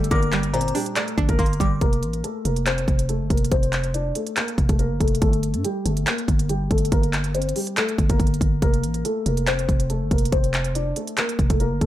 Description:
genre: hip hop, trap.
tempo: 141 BPM.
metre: 4/4.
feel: half-time.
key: F major.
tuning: A4 = 440 Hz.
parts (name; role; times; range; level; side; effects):
felt-muted upright piano; melody; 0.0-11.9 s; G3 to D5; -26 LUFS; left 2 dB; wide subtle chorus, low-pass filter, ping-pong delay.
string-like resonator pluck; accompaniment; 0.0-1.8 s; Bb2 to D5; -27 LUFS; right 4 dB; chorus, low-pass filter.
growling 808-style bass; bass; 0.0-11.9 s; F1 to G2; -23 LUFS; equal; none.
trap drum kit; drums; 0.0-11.9 s; handclaps, hi-hat, kick drum; -22 LUFS; equal; none.
glassy synth bell; second line; 0.1-1.8 s; Bb5 to D6; -31 LUFS; left 2 dB; chorus, ping-pong delay.
room: light reverb.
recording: none.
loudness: -19 LUFS.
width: side -13 dB against mid.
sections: 0.0-1.8 A section; 1.8-11.9 B section.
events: filter sweep 1.8-11.9.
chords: 0.0 Gm; 1.8 F5; 5.2 Gm; 8.6 F5.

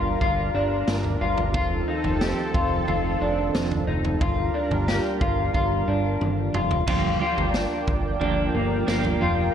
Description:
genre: dream pop.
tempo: 90 BPM.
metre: 4/4.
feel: straight.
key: G minor.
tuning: A4 = 437 Hz.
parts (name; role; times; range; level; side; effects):
lush unison pad; sustained chords; 0.0-9.5 s; Eb3 to G5; -29 LUFS; right 4 dB; chorus.
electric guitar at the edge of break-up; arpeggios; 0.0-9.5 s; Bb3 to G4; -26 LUFS; left 3 dB; lush chorus, digital delay.
fat analog bass; bass; 0.0-9.5 s; F1 to G1; -27 LUFS; equal; none.
raw garage drum kit; drums; 0.2-9.2 s; crash cymbal, kick drum, snare drum, toms; -28 LUFS; equal; none.
clean electric guitar; accompaniment; 6.9-9.5 s; G2 to G4; -27 LUFS; right 6 dB; tremolo, wide subtle chorus.
room: moderate recital hall reverb, RT60 1.6 s.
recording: none.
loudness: -21 LUFS.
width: side -8 dB against mid.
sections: 0.0-6.9 A section; 6.9-9.5 A section.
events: drum fill 6.2-6.9.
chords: 0.0 Gm7; 1.5 F7; 4.2 Gm7.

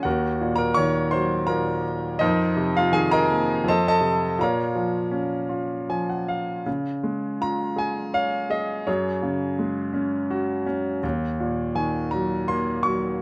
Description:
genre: classical, lyrical solo piano.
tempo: 82 BPM.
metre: 3/4.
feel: rubato.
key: Bb minor, Db major from 6.7 s.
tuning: A4 = 445 Hz.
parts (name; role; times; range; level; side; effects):
bright grand piano; solo; 0.0-13.2 s; Eb2 to Db6; -24 LUFS; equal; none.
room: light reverb.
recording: close, detailed microphones.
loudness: -24 LUFS.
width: mono.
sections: 0.0-6.7 A section; 6.7-13.2 B section.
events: grand piano fill 5.5-6.7.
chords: 0.1 Ebm; 2.2 F7sus4; 3.7 F7; 4.4 Bbm; 6.7 Db; 8.9 Gbsus2; 11.0 Ebm.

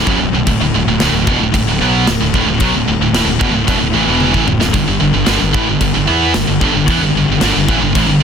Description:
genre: heavy metal.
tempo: 112 BPM.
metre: 4/4.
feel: straight.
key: unclear.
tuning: A4 = 440 Hz.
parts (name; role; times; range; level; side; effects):
heavy high-gain guitar; riff; 0.0-8.2 s; B1 to E4; -18 LUFS; left 12 dB; distortion.
scooped high-gain guitar; riff; 0.0-8.2 s; B1 to E4; -16 LUFS; right 9 dB; distortion.
thick fuzz guitar; riff; 0.0-8.2 s; B1 to E4; -19 LUFS; equal; distortion.
fuzz fingered electric bass; bass; 0.0-8.2 s; B0 to E2; -19 LUFS; equal; overdrive.
big rock drum kit; drums; 0.1-8.1 s; crash cymbal, kick drum, snare drum, toms; -19 LUFS; left 1 dB; none.
room: studio reverb.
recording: dense, heavily limited modern master.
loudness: -11 LUFS.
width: side -7 dB against mid.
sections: 0.0-8.2 A section.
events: drum fill 4.2-4.7.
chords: 0.5 D5; 4.7 G5.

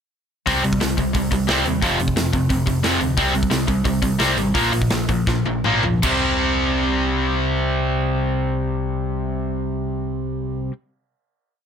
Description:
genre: punk rock.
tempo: 150-178 BPM.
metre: 4/4.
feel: straight.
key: unclear.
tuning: A4 = 440 Hz.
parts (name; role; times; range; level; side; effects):
cranked stack guitar; riff; 0.5-10.7 s; F2 to C4; -22 LUFS; left 9 dB; overdrive.
distorted electric guitar; riff; 0.5-10.7 s; F2 to C4; -23 LUFS; right 11 dB; distortion.
overdriven picked electric bass; bass; 0.5-10.7 s; F1 to Eb2; -26 LUFS; equal; none.
big rock drum kit; drums; 0.5-6.1 s; crash cymbal, hi-hat, kick drum, snare drum, toms; -24 LUFS; equal; none.
room: little or no reverb.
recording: none.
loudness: -18 LUFS.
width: side -7 dB against mid.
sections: 0.5-6.0 verse; 6.0-9.2 final chord.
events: slowing down 3.2-6.0; drum fill 5.3-6.0.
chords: 0.5 C5; 1.8 F5; 3.2 C5; 4.5 Bb5; 6.0 C5.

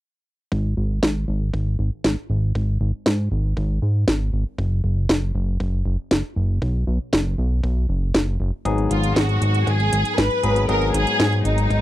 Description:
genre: italo disco.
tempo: 118 BPM.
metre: 4/4.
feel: straight.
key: G# minor.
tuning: A4 = 439 Hz.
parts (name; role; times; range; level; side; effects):
fat analog bass; bass; 0.5-11.8 s; F#1 to G#2; -20 LUFS; equal; none.
electronic kick drum; drums; 0.5-11.8 s; none; -33 LUFS; equal; high-pass filter on kick.
house drum kit; drums; 1.0-11.8 s; hi-hat, snare drum; -20 LUFS; equal; overdrive.
barky tine electric piano; stabs; 8.7-11.8 s; G#2 to G#4; -24 LUFS; left 4 dB; none.
rich studio violin section; melody; 8.9-11.8 s; D#4 to B4; -22 LUFS; equal; tape echo.
room: little or no reverb.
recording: dry, close 1970s-style studio recording.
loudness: -19 LUFS.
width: side -14 dB against mid.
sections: 0.5-11.8 A section.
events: filter sweep on analog synth bass 0.5-11.8.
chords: 0.5 N.C.; 6.6 B5; 8.7 G#m7.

